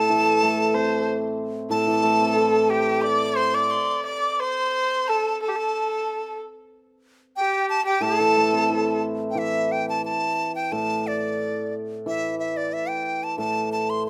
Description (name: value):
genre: chinese traditional, Chinese chamber ensemble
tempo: 90 BPM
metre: 2/4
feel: rubato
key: A yu mode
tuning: A4 = 438 Hz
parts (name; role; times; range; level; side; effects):
- breathy dizi; melody; 0.0-14.1 s; D5 to D6; -26 LUFS; equal; none
- rich erhu; second line; 0.0-9.0 s; G4 to D5; -27 LUFS; equal; none
- hammered dulcimer; accompaniment; 0.0-3.7, 8.0-14.1 s; A2 to E4; -27 LUFS; equal; none
room: light reverb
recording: close, detailed microphones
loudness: -23 LUFS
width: mono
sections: 0.0-9.4 A section; 9.4-14.1 B section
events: none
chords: none